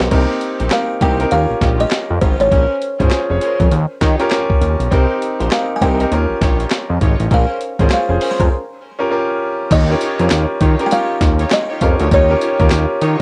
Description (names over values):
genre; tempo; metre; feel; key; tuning
R&B, new jack swing; 100 BPM; 4/4; swing 62% on 16ths; unclear; A4 = 440 Hz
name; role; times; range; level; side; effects
clear concert grand piano; accompaniment; 0.0-13.2 s; C4 to Db5; -21 LUFS; equal; cassette tape
fat analog bass; bass; 0.0-13.2 s; F1 to Eb3; -19 LUFS; equal; none
breakbeat sampler-style drum kit; drums; 0.0-13.2 s; crash cymbal, handclaps, hi-hat, kick drum, snare drum, tambourine; -19 LUFS; equal; cassette tape
warm studio string section; stabs; 0.1-13.2 s; Bb3 to Db5; -28 LUFS; equal; cassette tape
buzzing kalimba; melody; 0.7-13.2 s; C5 to C6; -22 LUFS; equal; cassette tape
room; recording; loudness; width
little or no reverb; home recording on cassette; -16 LUFS; mono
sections
0.1-9.7 A section; 9.7-13.2 B section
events
break 8.5-9.7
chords
0.1 Cm7; 1.3 Eb9; 2.5 Bbm9; 3.7 Eb9; 4.9 Cm7; 6.1 Eb9; 7.3 Bbm9; 8.5 Db6; 9.7 Eb9